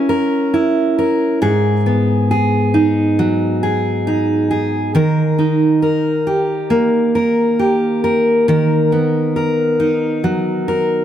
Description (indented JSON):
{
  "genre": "pop",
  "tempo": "68 BPM",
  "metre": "4/4",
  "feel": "straight",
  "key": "G# minor",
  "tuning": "A4 = 440 Hz",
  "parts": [
    { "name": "fingerpicked steel-string acoustic guitar", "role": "solo", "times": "0.0-11.0 s", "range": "G#2 to A#4", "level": "-13 LUFS", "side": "equal", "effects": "ping-pong delay" }
  ],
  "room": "light reverb",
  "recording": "none",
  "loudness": "-13 LUFS",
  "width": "side -10 dB against mid",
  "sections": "0.0-11.0 A section",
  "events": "none",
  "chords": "0.0 F#7; 1.4 G#m7; 5.0 D#"
}